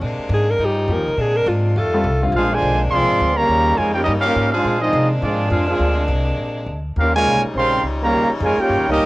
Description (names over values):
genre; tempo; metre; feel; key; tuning
jazz; 207 BPM; 4/4; swing 61% on 8ths; unclear; A4 = 440 Hz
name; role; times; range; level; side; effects
warm saxophone section; sustained chords; 0.0-9.1 s; C3 to F4; -26 LUFS; left 1 dB; cassette tape
upright bass; bass; 0.0-9.1 s; Ab1 to C3; -21 LUFS; equal; transformer saturation
warm alto saxophone; melody; 0.3-2.2 s; F4 to Bb4; -20 LUFS; equal; none
warm grand piano; accompaniment; 0.9-2.3 s; D3 to A4; -23 LUFS; left 2 dB; cassette tape
warm trombone section; second line; 2.3-9.1 s; Bb2 to G4; -20 LUFS; right 1 dB; cassette tape
warm trumpet section; melody; 2.4-9.1 s; C4 to C6; -18 LUFS; right 1 dB; none
room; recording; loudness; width
light reverb, small room ambience; home recording on cassette; -16 LUFS; side -20 dB against mid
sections
0.0-2.3 A section; 2.3-9.1 B section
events
alto saxophone solo 0.0-2.3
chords
0.0 Bb9; 0.6 Eb9; 1.2 Bb9; 1.8 F9; 2.3 Bb9; 3.5 Eb9; 4.7 Bb9; 7.0 Eb9